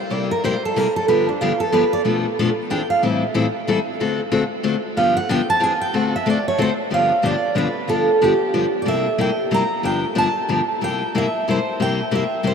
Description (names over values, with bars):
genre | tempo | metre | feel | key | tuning
jazz | 185 BPM | 3/4 | swing 60% on 8ths | G mixolydian | A4 = 435 Hz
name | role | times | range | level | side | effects
picked steel-string acoustic guitar | melody | 0.0-12.5 s | D4 to Bb5 | -20 LUFS | right 2 dB | none
picked steel-string acoustic guitar | accompaniment | 0.1-12.5 s | G2 to A4 | -21 LUFS | left 4 dB | none
room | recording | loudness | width
wet huge ambient reverb, RT60 9.0 s | in a vast, echoing space | -17 LUFS | side -6 dB against mid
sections
0.0-6.9 A section; 6.9-12.5 B section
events
steel-string acoustic guitar solo 0.0-6.9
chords
0.0 C7; 1.1 G7; 2.0 Bm7b5; 2.7 E7alt; 3.0 Am7; 4.0 D7; 5.0 G7; 5.6 E7alt; 5.9 D7; 6.9 G7; 8.9 C7; 9.8 G7; 10.8 C7